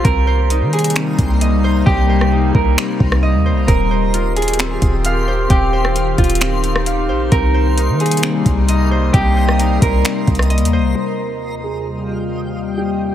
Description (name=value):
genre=hip hop, atmospheric cloud-rap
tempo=132 BPM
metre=4/4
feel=half-time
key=Eb major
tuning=A4 = 441 Hz
part: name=electric guitar at the edge of break-up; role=melody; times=0.0-13.1 s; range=F4 to Bb4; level=-22 LUFS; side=right 4 dB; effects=low-pass filter, digital delay
part: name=warbly tape-like pad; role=sustained chords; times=0.0-13.1 s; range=Eb2 to G4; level=-20 LUFS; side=left 3 dB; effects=chorus, built-in reverb, phaser, sidechain pumping, low-pass filter
part: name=Celtic harp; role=arpeggios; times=0.0-13.1 s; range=C4 to F5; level=-25 LUFS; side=right 1 dB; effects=digital delay
part: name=warm 808-style bass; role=bass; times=0.0-10.9 s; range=Eb1 to Eb3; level=-16 LUFS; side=equal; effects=none
part: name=smooth R&B drum kit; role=drums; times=0.0-10.7 s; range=finger snaps, hi-hat, kick drum, rim click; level=-17 LUFS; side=equal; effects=none
part: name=backwards swelling texture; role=texture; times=0.0-13.1 s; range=C4 to C6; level=-28 LUFS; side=left 1 dB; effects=built-in reverb
room=digital ambience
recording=none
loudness=-13 LUFS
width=side -11 dB against mid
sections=0.0-11.0 A section; 11.0-13.1 B section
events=hi-hats muted 1.9-3.7; filter sweep 11.0-13.1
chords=0.0 Cm7; 3.7 Eb69; 7.3 Cm7; 11.0 Eb69